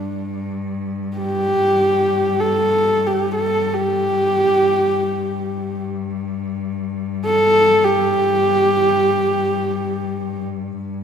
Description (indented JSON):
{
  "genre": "mongolian traditional, Mongolian folk",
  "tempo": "free time",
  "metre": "none",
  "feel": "none",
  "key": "unclear",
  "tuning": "A4 = 440 Hz",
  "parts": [
    { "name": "warm horsehead fiddle", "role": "melody", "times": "0.0-10.4 s", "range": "D4 to A4", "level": "-16 LUFS", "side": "right 1 dB", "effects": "none" },
    { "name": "rich cello", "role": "drone", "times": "0.0-11.0 s", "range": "G2", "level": "-24 LUFS", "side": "left 5 dB", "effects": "none" }
  ],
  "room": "wet concert hall reverb, RT60 2.0 s",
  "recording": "minimal, uncompressed stereo recording",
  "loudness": "-16 LUFS",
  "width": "side -8 dB against mid",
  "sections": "0.0-10.8 A section",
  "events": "none",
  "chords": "none",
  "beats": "free time"
}